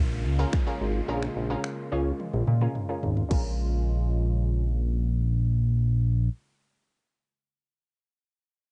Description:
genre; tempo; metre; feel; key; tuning
dance-pop; 108 BPM; 4/4; straight; Bb minor; A4 = 440 Hz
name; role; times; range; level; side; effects
analog pluck; accompaniment; 0.0-7.0 s; Db4 to Db5; -37 LUFS; equal; chorus, sidechain pumping, low-pass filter
warm analog pad; sustained chords; 0.0-6.3 s; Db3 to F4; -38 LUFS; equal; subtle chorus, sidechain pumping, low-pass filter
chorused synth bass; bass; 0.0-6.3 s; Ab1 to Bb2; -27 LUFS; equal; sidechain pumping
downlifter; sound effects; 0.0-3.3 s; none; -48 LUFS; equal; none
house drum kit; drums; 0.5-3.4 s; crash cymbal, finger snaps, kick drum, toms; -31 LUFS; equal; cassette tape
room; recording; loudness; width
little or no reverb; home recording on cassette, nothing above 10.5 kHz; -27 LUFS; mono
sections
0.0-3.3 A section; 3.3-5.5 B section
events
filter sweep 0.0-3.3; drum fill 2.2-3.3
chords
0.0 Bbm7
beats
0.53 | 1.09 1.64 2.20 2.75 | 3.31 3.86 4.42 4.97

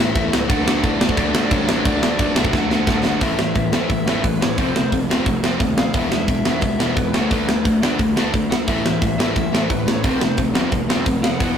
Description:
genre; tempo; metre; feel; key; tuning
punk rock; 176 BPM; 4/4; straight; unclear; A4 = 440 Hz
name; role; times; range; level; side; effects
lead guitar through a small cranked amp; melody; 0.0-11.6 s; B4 to F#5; -28 LUFS; left 2 dB; overdrive, ping-pong delay
sludgy distorted guitar; riff; 0.0-11.6 s; E2 to D4; -22 LUFS; left 4 dB; overdrive
fuzz picked electric bass; bass; 0.0-11.5 s; E1 to A2; -27 LUFS; right 1 dB; overdrive
tight metal drum kit; drums; 0.2-11.5 s; crash cymbal, hi-hat, kick drum, snare drum; -19 LUFS; right 1 dB; none
crunchy overdriven guitar; riff; 0.5-11.6 s; A2 to D4; -25 LUFS; right 5 dB; none
room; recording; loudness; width
moderate small room reverb, RT60 0.5 s; rough rehearsal-room recording, tube saturation; -16 LUFS; side -8 dB against mid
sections
0.0-3.2 A section; 3.2-11.6 B section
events
drum fill 2.5-3.2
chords
0.5 D; 3.2 A5; 4.6 F; 5.9 E; 7.1 D5; 8.7 A5; 10.0 F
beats
0.16 | 0.50 0.84 1.18 1.51 | 1.85 2.19 2.53 2.87 | 3.21 3.55 3.90 4.24 | 4.58 4.92 5.26 5.60 | 5.94 6.29 6.63 6.97 | 7.31 7.65 7.99 8.33 | 8.67 9.02 9.36 9.70 | 10.04 10.38 10.72 11.06 | 11.40

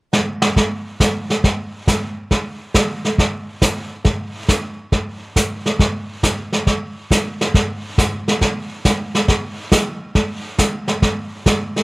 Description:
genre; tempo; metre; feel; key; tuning
country; 138 BPM; 4/4; swing 68% on 8ths; none; none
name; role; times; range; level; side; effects
vintage brush drum kit; drums; 0.1-11.8 s; brushed snare drum, hi-hat, kick drum, snare drum; -16 LUFS; equal; none
room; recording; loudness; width
little or no reverb; none; -16 LUFS; side -23 dB against mid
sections
0.6-7.5 A section; 7.5-11.8 B section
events
drum fill 0.1-0.6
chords
none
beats
0.13 | 0.57 1.00 1.44 1.87 | 2.31 2.75 3.18 3.62 | 4.05 4.49 4.93 5.36 | 5.80 6.23 6.67 7.11 | 7.54 7.98 8.41 8.85 | 9.28 9.72 10.15 10.59 | 11.03 11.46

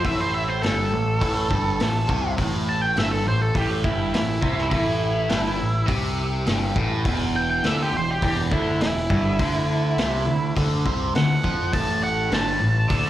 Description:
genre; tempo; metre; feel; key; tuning
blues rock power trio and southern rock; 103 BPM; 4/4; straight; unclear; A4 = 440 Hz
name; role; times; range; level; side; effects
octave-fuzz lead guitar; melody; 0.0-13.1 s; E4 to A5; -25 LUFS; right 1 dB; distortion
cranked stack guitar; riff; 0.0-13.1 s; E2 to F3; -24 LUFS; equal; overdrive, phaser, slapback echo
growling picked electric bass; bass; 0.0-13.1 s; E1 to F2; -27 LUFS; equal; overdrive
vintage drum kit; drums; 0.0-13.0 s; hi-hat, kick drum, snare drum; -26 LUFS; equal; none
room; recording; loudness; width
light reverb; live gig heard through the venue's PA, club reverb; -20 LUFS; side -13 dB against mid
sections
0.0-13.1 A section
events
lead electric guitar solo 0.0-13.1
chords
0.0 A5; 7.1 Em7; 9.4 D7; 11.7 Gsus2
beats
| 0.04 0.63 1.21 1.80 | 2.38 2.97 3.55 4.13 | 4.72 5.30 5.89 6.47 | 7.05 7.64 8.22 8.81 | 9.39 9.97 10.56 11.14 | 11.73 12.31 12.90

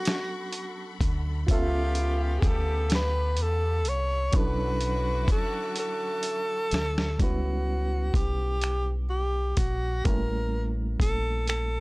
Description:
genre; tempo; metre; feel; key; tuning
slow six-eight R&B; 42 BPM (dotted quarters); 6/8; straight; unclear; A4 = 445 Hz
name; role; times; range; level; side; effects
breathy tenor saxophone; melody; 0.0-11.8 s; E#4 to C#5; -30 LUFS; equal; none
reed electric piano; accompaniment; 0.0-11.8 s; F#3 to E5; -36 LUFS; right 2 dB; harmonic tremolo
warm symphonic string section; sustained chords; 0.0-7.2 s; E#4 to D6; -43 LUFS; left 2 dB; none
dusty soul sampler-style drum kit; drums; 0.1-11.7 s; finger snaps, hi-hat, kick drum, snare drum; -26 LUFS; equal; none
deep dub fingered electric bass; bass; 1.0-11.8 s; A1 to E2; -28 LUFS; equal; tube saturation
clear horn section; stabs; 1.5-6.7 s; C#3 to G4; -40 LUFS; left 2 dB; none
room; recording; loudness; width
little or no reverb; dry, gritty hardware recording; -25 LUFS; side -24 dB against mid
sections
0.0-7.2 A section; 7.2-11.8 B section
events
drum fill 5.8-7.2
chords
0.0 Gmaj9#11 (rootless); 1.5 C#7alt; 4.3 Bm11; 7.2 C#m7b5; 10.1 A7b9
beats
0.06 | 1.48 2.91 | 4.34 5.77 | 7.20 8.63 | 10.05 11.48

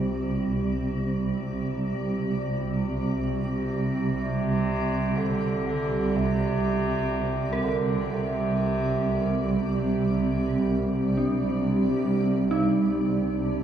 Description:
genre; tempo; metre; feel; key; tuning
dark ambient drone; free time; none; none; unclear; A4 = 440 Hz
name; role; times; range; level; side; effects
granular cloud pad; sustained chords; 0.0-13.6 s; C3 to D5; -28 LUFS; right 3 dB; built-in reverb
dark detuned synth bell; arpeggios; 0.0-13.6 s; D4 to Bb4; -31 LUFS; equal; chorus, tremolo, dub echo
swarming drone; drone; 0.0-13.6 s; C2 to C3; -28 LUFS; right 1 dB; built-in reverb
metallic inharmonic drone; texture; 0.0-13.6 s; G3 to D4; -33 LUFS; right 3 dB; chorus, built-in reverb, phaser
clear bass clarinet; melody; 4.2-10.1 s; C3 to D3; -30 LUFS; right 1 dB; dub echo
room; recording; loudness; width
wet echo chamber reverb, RT60 2.4 s; echo-heavy mix, small room ambience; -23 LUFS; side -9 dB against mid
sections
0.0-12.1 A section; 12.1-13.6 B section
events
none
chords
0.0 Csus2; 12.1 Cmadd9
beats
free time

